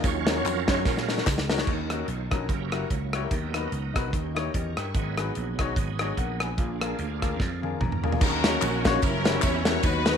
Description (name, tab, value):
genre	uptempo gospel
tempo	147 BPM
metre	4/4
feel	swing 57% on 8ths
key	Eb minor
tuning	A4 = 440 Hz
part	bright upright piano	accompaniment	0.0-10.2 s	Ab2 to Bb5	-32 LUFS	left 11 dB	none
part	bright tonewheel organ	sustained chords	0.0-10.2 s	Eb3 to Fb5	-33 LUFS	right 9 dB	slow rotary speaker, chorus vibrato
part	vintage slap bass	bass	0.0-10.2 s	Gb1 to Bb2	-31 LUFS	right 1 dB	none
part	modern studio drum kit	drums	0.0-10.1 s	crash cymbal, hi-hat, kick drum, ride cymbal, rim click, snare drum, toms	-27 LUFS	equal	none
part	tambourine and handclaps	percussion	0.0-1.6, 8.2-10.1 s	none	-36 LUFS	left 4 dB	none
part	clear symphonic string section	melody	8.2-10.2 s	Db4 to Db5	-27 LUFS	left 2 dB	none
room	moderate echo chamber reverb, RT60 1.2 s, small room ambience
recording	1960s-style stereo with parts hard left and right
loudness	-24 LUFS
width	side -7 dB against mid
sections	0.0-1.7 A section; 1.7-8.2 B section; 8.2-10.2 C section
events	tonewheel organ solo 0.0-1.7; drum fill 0.9-1.7, 7.4-8.2; upright piano fill 7.4-8.2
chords	0.0 Ebm7; 2.5 Gb7b9; 3.3 Bmaj7/D#; 4.1 Eb7b9; 4.9 Abm7; 6.6 Bb7; 8.2 Ebm7; 9.0 Gb7b9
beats	| 0.04 0.45 0.85 1.26 | 1.67 2.08 2.49 2.90 | 3.31 3.72 4.13 4.54 | 4.95 5.35 5.76 6.17 | 6.58 6.99 7.40 7.80 | 8.21 8.62 9.02 9.43 | 9.83